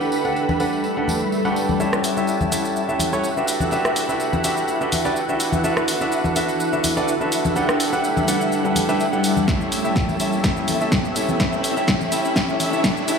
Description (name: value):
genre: piano house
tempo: 125 BPM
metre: 4/4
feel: swing 54% on 16ths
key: A mixolydian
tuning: A4 = 438 Hz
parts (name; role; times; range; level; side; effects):
- analog string pad; sustained chords; 0.0-13.2 s; E4 to B5; -27 LUFS; left 1 dB; ensemble chorus, vintage 12-bit sampler grit, sidechain pumping
- clear baby grand piano; riff; 0.0-13.2 s; C#4 to F#5; -23 LUFS; right 1 dB; sidechain pumping, low-pass filter, tape echo
- tambourine and congas; percussion; 0.0-13.2 s; none; -28 LUFS; left 2 dB; none
- granular cloud pad; texture; 0.0-13.2 s; G3 to B5; -25 LUFS; equal; built-in reverb, sidechain pumping
- swell and riser; sound effects; 1.0-13.2 s; none; -31 LUFS; right 1 dB; none
- punchy analog drum machine; drums; 1.8-13.2 s; hi-hat, rim click, shaker, snare drum; -25 LUFS; equal; none
- electronic kick drum; drums; 9.5-12.9 s; none; -23 LUFS; equal; none
room: moderate plate reverb, RT60 1.2 s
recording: played on a big sound system in a bare room, stone room reverb, high-pass filter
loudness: -18 LUFS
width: side -6 dB against mid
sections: 0.0-1.8 A section; 1.8-13.2 B section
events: swell 1.0-1.8; build-up 1.8-13.2; riser 1.8-13.2; drum fill 9.5-13.2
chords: 0.0 Gmaj9; 1.8 A7; 3.5 Em9; 5.6 D69; 7.6 Gmaj9; 9.5 A7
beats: 0.36 0.84 1.32 | 1.80 2.28 2.76 3.24 | 3.72 4.20 4.68 5.16 | 5.64 6.12 6.60 7.08 | 7.56 8.04 8.52 9.00 | 9.48 9.96 10.44 10.92 | 11.40 11.88 12.36 12.84